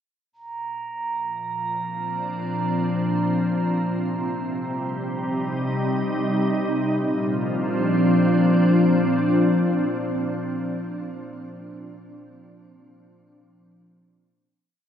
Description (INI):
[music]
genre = ambient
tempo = free time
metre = none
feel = none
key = Bb major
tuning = A4 = 440 Hz
[part]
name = soft additive organ-like pad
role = sustained chords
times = 1.5-10.9 s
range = Bb2 to Eb4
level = -21 LUFS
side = equal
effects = ensemble chorus, built-in reverb, shimmer reverb
[part]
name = glass harmonica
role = texture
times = 0.3-6.9 s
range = Bb5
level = -31 LUFS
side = right 5 dB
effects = shimmer reverb
[sound]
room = wet cathedral reverb, RT60 5.3 s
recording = none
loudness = -21 LUFS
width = side -9 dB against mid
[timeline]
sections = 0.3-6.9 A section; 6.9-10.2 final chord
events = fade-in on ambient pad 0.3-6.9; fade-out on glass harmonica 0.3-6.9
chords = 0.3 Bb; 3.6 Cm7; 6.9 Bb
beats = free time